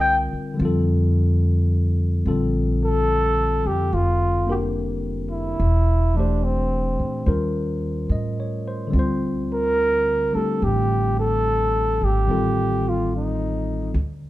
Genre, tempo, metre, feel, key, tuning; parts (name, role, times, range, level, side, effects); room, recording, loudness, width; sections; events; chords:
jazz ballad; 72 BPM; 4/4; swing 68% on 8ths; Bb major; A4 = 439 Hz
breathy flugelhorn; melody; 0.0-13.9 s; C4 to G5; -22 LUFS; equal
barky tine electric piano; accompaniment; 0.0-14.0 s; D3 to Eb5; -25 LUFS; left 2 dB
upright bass; bass; 0.0-14.3 s; E1 to Bb2; -22 LUFS; equal
light reverb; band playing live in one room; -19 LUFS; side -16 dB against mid
0.0-2.2 A section; 2.2-14.3 B section
flugelhorn solo 0.0-2.2
0.0 C5; 0.6 F69; 2.2 Bb6; 5.6 Em7b5; 7.3 Eb13; 8.9 Dm7; 12.3 Am7b5